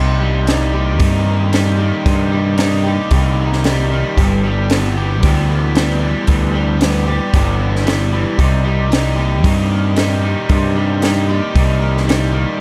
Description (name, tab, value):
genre	indie rock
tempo	114 BPM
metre	4/4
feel	straight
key	unclear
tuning	A4 = 441 Hz
part	biting overdriven guitar	riff	0.0-12.6 s	G2 to G4	-23 LUFS	equal	subtle chorus, tape echo
part	electric guitar through a small old amp	riff	0.0-12.6 s	G2 to G4	-24 LUFS	equal	none
part	growling picked electric bass	bass	0.0-12.4 s	G1 to G2	-19 LUFS	equal	overdrive
part	compact cocktail drum kit	drums	0.5-12.2 s	hi-hat, kick drum, snare drum	-19 LUFS	equal	none
room	light reverb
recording	dark, warm production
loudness	-15 LUFS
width	mono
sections	0.0-12.6 A section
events	none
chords	0.0 Cm; 4.2 G6; 8.4 Cm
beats	0.47 1.00 1.53 | 2.06 2.59 3.12 3.64 | 4.17 4.70 5.23 5.75 | 6.28 6.81 7.34 7.86 | 8.39 8.91 9.44 9.97 | 10.49 11.02 11.54 12.06 | 12.59